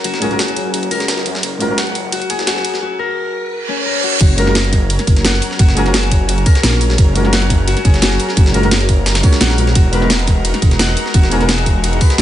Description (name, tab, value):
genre	liquid drum and bass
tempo	173 BPM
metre	4/4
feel	straight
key	F# major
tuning	A4 = 445 Hz
part	lush unison pad	sustained chords	0.0-12.2 s	F#3 to A#4	-24 LUFS	equal	chorus, sidechain pumping
part	Celtic harp	arpeggios	0.0-12.2 s	C#4 to F#5	-22 LUFS	left 5 dB	vintage 12-bit sampler grit, dub echo
part	swelling detuned saw bass	bass	0.0-12.2 s	E1 to F#2	-17 LUFS	equal	high-pass filter
part	breakbeat sampler-style drum kit	drums	0.0-12.2 s	hi-hat, ride cymbal, snare drum	-21 LUFS	right 1 dB	high-pass filter on cymbals, studio reverb, high-pass filter on snare, high-pass filter on hats, high-pass filter on room
part	garage drum kit	drums	0.0-12.2 s	crash cymbal, hi-hat, snare drum	-19 LUFS	equal	studio reverb
part	riser and reverse cymbal	sound effects	2.9-4.2 s	none	-23 LUFS	right 5 dB	none
part	dark concert grand piano	accompaniment	0.2-1.8, 4.4-11.5 s	G#3 to C#5	-20 LUFS	equal	ping-pong delay
part	electronic kick drum	drums	4.2-12.1 s	none	-11 LUFS	equal	studio reverb
room	light reverb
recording	nothing above 10.6 kHz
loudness	-12 LUFS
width	side -12 dB against mid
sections	0.0-4.2 A section; 4.2-12.2 B section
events	build-up 0.0-4.2; riser 2.9-4.2; reverse cymbal 3.5-4.2; drop 4.2-12.2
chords	0.0 F#; 4.2 F#maj7; 9.8 Emaj9#11